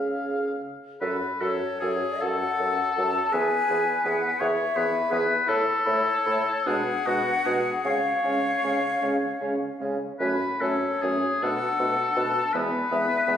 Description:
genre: classical, slow romantic movement for wind quintet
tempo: 48-56 BPM (dotted quarters)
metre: 6/8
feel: rubato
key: F# minor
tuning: A4 = 441 Hz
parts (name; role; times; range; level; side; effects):
- clear oboe; second line; 0.0-13.4 s; F#4 to E#5; -26 LUFS; left 2 dB; none
- clear clarinet; accompaniment; 0.0-13.4 s; B3 to A4; -31 LUFS; right 3 dB; none
- dark bassoon; bass; 0.0-13.4 s; E2 to C#3; -29 LUFS; right 1 dB; none
- clear French horn; accompaniment; 1.0-13.4 s; G#3 to F#4; -38 LUFS; equal; none
- mellow hollow silver concert flute; melody; 1.4-13.4 s; C#5 to A5; -28 LUFS; left 4 dB; none
room: wet concert hall reverb, RT60 1.9 s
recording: recorded on a phone in the room, club reverb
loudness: -22 LUFS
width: side -9 dB against mid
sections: 0.0-1.0 A section; 1.0-13.4 B section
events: none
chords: 0.0 C#; 1.0 F#m; 3.3 E; 5.5 A; 6.7 G#dim/B; 7.8 C#; 10.2 F#m; 11.4 Bm7; 12.5 E

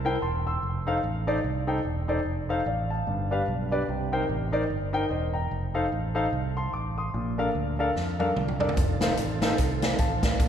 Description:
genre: uptempo gospel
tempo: 148 BPM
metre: 4/4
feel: swing 59% on 8ths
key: unclear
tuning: A4 = 439 Hz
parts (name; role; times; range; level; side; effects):
- warm grand piano; accompaniment; 0.0-10.5 s; G2 to E6; -27 LUFS; left 1 dB; none
- fingered electric bass; bass; 0.0-10.5 s; E1 to F2; -30 LUFS; right 1 dB; none
- swinging big-band drum kit; drums; 8.0-10.5 s; hi-hat, kick drum, snare drum, toms; -26 LUFS; equal; none
- tonewheel organ; sustained chords; 8.8-10.5 s; D3 to A4; -33 LUFS; right 2 dB; slow rotary speaker, chorus vibrato
room: wet church reverb, RT60 2.7 s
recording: recorded in a church or concert hall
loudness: -25 LUFS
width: side -8 dB against mid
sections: 0.0-10.5 A section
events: drum fill 8.0-8.8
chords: 0.0 C7; 0.6 F7; 3.1 G7; 3.9 Cm7; 5.5 F7; 7.1 Bbmaj7; 8.8 F7

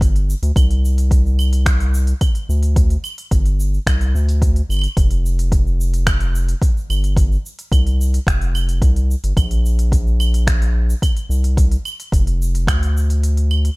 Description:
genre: folktronica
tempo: 109 BPM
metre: 4/4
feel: straight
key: unclear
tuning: A4 = 440 Hz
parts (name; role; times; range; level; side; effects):
- round analog bass; bass; 0.0-13.7 s; F1 to D2; -16 LUFS; equal; none
- electronic kick drum; drums; 0.0-12.8 s; none; -16 LUFS; equal; overdrive
- organic electronic drum kit; drums; 0.0-13.8 s; claves, finger snaps, hi-hat, shaker; -26 LUFS; right 1 dB; overdrive
room: little or no reverb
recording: none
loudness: -14 LUFS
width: side -24 dB against mid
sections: 0.0-13.8 A section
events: kick drops out 13.2-13.8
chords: none

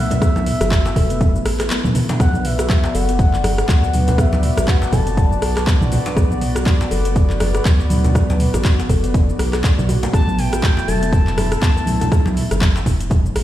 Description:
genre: afro house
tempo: 121 BPM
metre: 4/4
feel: swing 57% on 16ths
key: B phrygian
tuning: A4 = 440 Hz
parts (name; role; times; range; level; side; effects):
- expressive synth lead; melody; 0.0-5.7, 10.1-12.1 s; E5 to A5; -26 LUFS; left 2 dB; chorus, ping-pong delay
- warm analog pad; sustained chords; 0.0-13.4 s; A3 to D5; -28 LUFS; left 1 dB; chorus, sidechain pumping
- round analog bass; bass; 0.0-13.4 s; E1 to D2; -22 LUFS; equal; sidechain pumping
- kalimba; arpeggios; 0.1-12.1 s; A3 to A4; -26 LUFS; left 1 dB; sidechain pumping, ping-pong delay
- deep house drum kit; drums; 0.1-13.4 s; handclaps, hi-hat, rim click, shaker, toms; -23 LUFS; equal; overdrive
- congas; percussion; 0.1-13.3 s; none; -24 LUFS; right 1 dB; none
- djembe; percussion; 0.1-13.4 s; none; -28 LUFS; left 1 dB; none
- electronic kick drum; drums; 0.2-13.2 s; none; -16 LUFS; equal; overdrive
room: little or no reverb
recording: played on a big sound system in a bare room, stone room reverb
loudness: -14 LUFS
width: side -13 dB against mid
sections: 0.0-13.4 A section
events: drum fill 1.7-2.2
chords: 0.0 Am9; 2.2 Bm7; 10.1 Am9

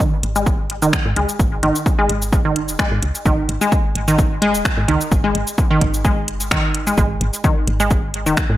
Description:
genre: minimal techno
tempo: 129 BPM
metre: 4/4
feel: swing 54% on 16ths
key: unclear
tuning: A4 = 439 Hz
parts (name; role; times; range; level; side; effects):
- resonant blip pluck; riff; 0.0-8.3 s; D#3 to G#3; -19 LUFS; equal; chorus, sidechain pumping, dub echo
- electronic kick drum; drums; 0.0-8.5 s; none; -18 LUFS; equal; overdrive
- house drum kit; drums; 0.0-8.5 s; finger snaps, hi-hat, shaker; -23 LUFS; equal; overdrive
- woody FM bass; bass; 0.2-8.6 s; D#1 to G#2; -23 LUFS; equal; sidechain pumping
room: light reverb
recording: none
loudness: -15 LUFS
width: side -14 dB against mid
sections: 0.0-7.0 A section; 7.0-8.6 B section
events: build-up 0.0-7.0; filter sweep on synth pluck 0.0-7.0; drop 7.0-8.6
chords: 0.0 G#5

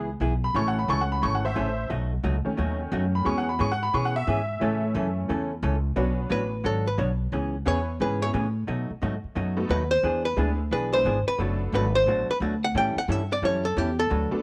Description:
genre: country, western swing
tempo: 177 BPM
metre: 4/4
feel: swing 64% on 8ths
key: A major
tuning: A4 = 439 Hz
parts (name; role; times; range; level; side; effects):
- honky-tonk upright piano; accompaniment; 0.0-11.9, 14.3-14.4 s; D#3 to C#6; -31 LUFS; equal; none
- vintage hollow-body jazz guitar; accompaniment; 0.0-14.3 s; B2 to C#5; -33 LUFS; equal; none
- upright bass; bass; 0.0-14.4 s; F#1 to B2; -30 LUFS; equal; none
- archtop guitar, miked and amplified; second line; 6.3-14.3 s; G4 to G5; -28 LUFS; equal; none
room: little or no reverb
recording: none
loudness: -26 LUFS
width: mono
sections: 0.0-6.0 A section; 6.0-14.4 A section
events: honky-tonk piano solo 0.0-6.0; hollow-body jazz guitar solo 6.0-14.4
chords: 0.0 E; 0.5 A; 1.9 B7; 3.3 E6; 4.6 A; 6.0 Bmadd9; 7.3 C#m7; 8.7 B7; 10.0 E7; 11.4 Bm7; 12.8 A7

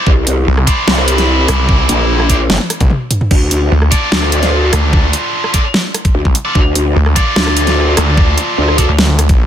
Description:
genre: heavy wobble dubstep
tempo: 148 BPM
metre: 4/4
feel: half-time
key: D minor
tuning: A4 = 440 Hz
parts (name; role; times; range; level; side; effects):
- heavy high-gain guitar; stabs; 0.0-8.8 s; E4 to D5; -16 LUFS; equal; distortion, tape echo
- growl bass; bass; 0.1-8.9 s; G1 to D2; -13 LUFS; equal; chorus, overdrive
- electronic kick drum; drums; 0.1-9.4 s; none; -12 LUFS; equal; none
- dubstep drum kit; drums; 0.3-9.4 s; crash cymbal, hi-hat, rim click, snare drum, toms; -16 LUFS; equal; none
- snarling distorted saw bass; bass; 0.5-9.5 s; C2 to D2; -12 LUFS; equal; distortion, overdrive
room: digital ambience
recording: none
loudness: -10 LUFS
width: side -10 dB against mid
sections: 0.0-9.5 A section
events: drum fill 2.5-3.3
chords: 0.0 Cadd9; 3.3 Dm

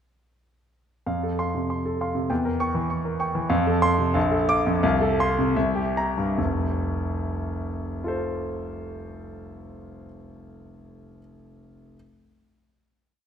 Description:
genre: classical, virtuoso piano study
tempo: 70-100 BPM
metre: 2/4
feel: rubato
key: F major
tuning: A4 = 440 Hz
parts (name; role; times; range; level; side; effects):
- warm concert grand piano; solo; 1.1-12.0 s; F1 to D6; -23 LUFS; equal; none
room: wet recital hall reverb, RT60 1.6 s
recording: faint mains hum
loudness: -22 LUFS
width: side -8 dB against mid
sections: 1.1-6.4 A section; 6.4-9.7 final chord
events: slowing down 2.9-6.4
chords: 1.1 F; 2.3 Edim7; 3.5 F; 4.2 Bbmaj7; 4.8 F/C; 5.6 C7; 6.4 F

